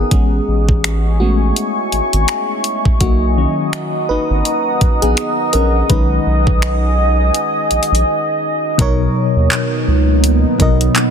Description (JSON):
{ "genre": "contemporary R&B", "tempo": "83 BPM", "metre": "4/4", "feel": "swing 58% on 16ths", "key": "B major", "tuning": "A4 = 440 Hz", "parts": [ { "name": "FM electric piano with auto-pan", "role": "accompaniment", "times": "0.0-11.1 s", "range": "A#2 to D#5", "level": "-19 LUFS", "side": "left 2 dB", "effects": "none" }, { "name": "deep dark ambient pad", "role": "sustained chords", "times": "0.0-11.1 s", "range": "A#3 to D#6", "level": "-18 LUFS", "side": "right 1 dB", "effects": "chorus, built-in reverb, sidechain pumping" }, { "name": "saturated sub bass", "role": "bass", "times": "0.0-10.9 s", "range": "G#1 to D#2", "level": "-15 LUFS", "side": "equal", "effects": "none" }, { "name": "smooth R&B drum kit", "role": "drums", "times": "0.1-11.1 s", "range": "finger snaps, handclaps, hi-hat, kick drum", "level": "-16 LUFS", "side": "equal", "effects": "soft clipping on snare" }, { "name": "soft synth bell", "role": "texture", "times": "8.8-9.5 s", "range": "A#4", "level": "-35 LUFS", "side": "left 1 dB", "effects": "none" } ], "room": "little or no reverb", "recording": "dense, heavily limited modern master", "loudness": "-12 LUFS", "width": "side -7 dB against mid", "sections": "0.0-8.8 A section; 8.8-11.1 B section", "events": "FM electric piano solo 0.0-8.8; break 8.1-8.8", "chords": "0.1 Amaj9; 3.0 Bmaj7; 5.9 B6; 8.8 Bmaj7", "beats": "| 0.11 0.84 1.56 2.28 | 3.01 3.73 4.45 5.17 | 5.90 6.62 7.34 8.07 | 8.79 9.51 10.23 10.96" }